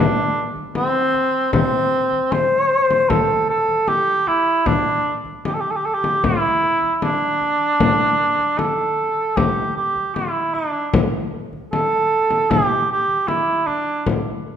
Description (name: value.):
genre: mongolian traditional, Mongolian folk.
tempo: 76 BPM.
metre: 4/4.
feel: straight.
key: G zhi mode.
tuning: A4 = 440 Hz.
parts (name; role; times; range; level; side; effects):
mellow cor anglais; melody; 0.0-14.1 s; C4 to C5; -18 LUFS; right 1 dB; none.
frame drum; percussion; 0.6-14.2 s; none; -22 LUFS; left 3 dB; none.
room: wet recital hall reverb, RT60 1.6 s.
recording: dark, warm production.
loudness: -16 LUFS.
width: side -9 dB against mid.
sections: 0.0-14.6 A section.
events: none.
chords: none.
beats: 0.74 1.53 2.31 | 3.10 3.89 4.67 5.46 | 6.24 7.03 7.81 8.59 | 9.38 10.16 10.94 11.72 | 12.51 13.29 14.07.